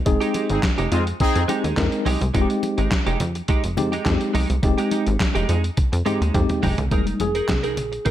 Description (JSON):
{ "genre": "early-eighties boogie funk", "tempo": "105 BPM", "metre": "4/4", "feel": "straight", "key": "F minor", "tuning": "A4 = 440 Hz", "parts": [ { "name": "plucky analog bass", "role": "bass", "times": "0.0-8.1 s", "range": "F1 to F2", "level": "-23 LUFS", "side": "equal", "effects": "none" }, { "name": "tine electric piano", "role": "accompaniment", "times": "0.1-8.1 s", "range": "G3 to Bb4", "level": "-24 LUFS", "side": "left 2 dB", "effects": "overdrive, fast stereo tremolo" }, { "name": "direct-recorded clean electric guitar", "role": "riff", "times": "0.1-8.1 s", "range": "Ab3 to Bb4", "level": "-27 LUFS", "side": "right 4 dB", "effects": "analog chorus" }, { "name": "lo-fi sampler-style drum kit", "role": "drums", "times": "0.1-8.1 s", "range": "handclaps, hi-hat, kick drum, snare drum, toms", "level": "-23 LUFS", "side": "equal", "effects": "gated reverb" }, { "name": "congas", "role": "percussion", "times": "0.1-8.1 s", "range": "none", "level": "-33 LUFS", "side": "left 2 dB", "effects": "none" }, { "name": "analog synth brass", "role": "second line", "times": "0.5-1.4 s", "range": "Ab3 to Ab4", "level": "-24 LUFS", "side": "left 2 dB", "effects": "chorus" } ], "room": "light reverb", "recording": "none", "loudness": "-19 LUFS", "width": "side -12 dB against mid", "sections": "0.0-6.9 A section; 6.9-8.1 B section", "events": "drum fill 5.8-6.9; tine electric piano solo 6.9-8.1", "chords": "0.0 Fm11" }